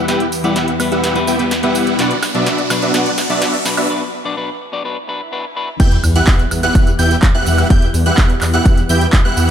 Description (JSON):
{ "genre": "EDM, festival progressive house", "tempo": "126 BPM", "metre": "4/4", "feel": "straight", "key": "E minor", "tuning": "A4 = 440 Hz", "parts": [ { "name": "clean electric guitar", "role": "accompaniment", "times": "0.0-5.7 s", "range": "B2 to D5", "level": "-20 LUFS", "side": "left 4 dB", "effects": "sidechain pumping, tape echo" }, { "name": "lush unison pad", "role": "sustained chords", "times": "0.0-9.5 s", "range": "E2 to F#5", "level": "-25 LUFS", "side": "left 1 dB", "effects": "chorus, phaser, sidechain pumping" }, { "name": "dense compressed supersaw", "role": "riff", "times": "0.0-9.5 s", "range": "B3 to G5", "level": "-18 LUFS", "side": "right 1 dB", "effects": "sidechain pumping, low-pass filter, tape echo" }, { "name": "riser, swell and sub drop", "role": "sound effects", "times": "0.3-7.7 s", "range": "none", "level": "-25 LUFS", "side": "equal", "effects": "none" }, { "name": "big-room dance drum kit", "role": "drums", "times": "0.1-9.5 s", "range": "crash cymbal, handclaps, hi-hat, snare drum, tambourine, woodblock", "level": "-22 LUFS", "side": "right 2 dB", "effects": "high-pass filter on hats, high-pass filter on snare, high-pass filter on perc, high-pass filter on cymbals" }, { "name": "plucky unison lead", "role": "arpeggios", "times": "5.8-9.5 s", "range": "F#6 to G6", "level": "-21 LUFS", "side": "right 1 dB", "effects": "sidechain pumping, tape echo" }, { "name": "wide detuned saw bass", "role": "bass", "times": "5.8-9.5 s", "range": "E1 to E2", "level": "-16 LUFS", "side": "equal", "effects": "chorus, sidechain pumping" }, { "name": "electronic kick drum", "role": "drums", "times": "5.8-9.2 s", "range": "none", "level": "-12 LUFS", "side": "equal", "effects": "none" } ], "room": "light reverb, digital ambience", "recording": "high-pass filter", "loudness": "-12 LUFS", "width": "side -9 dB against mid", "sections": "0.0-5.8 A section; 5.8-9.5 B section", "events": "build-up 0.0-5.8; drum fill 0.0-3.9; riser 0.3-3.9; break 3.9-5.8; swell 5.1-5.8; drop 5.8-9.5; impact 5.8-7.7", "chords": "0.0 Em; 2.0 Bm; 5.8 Em" }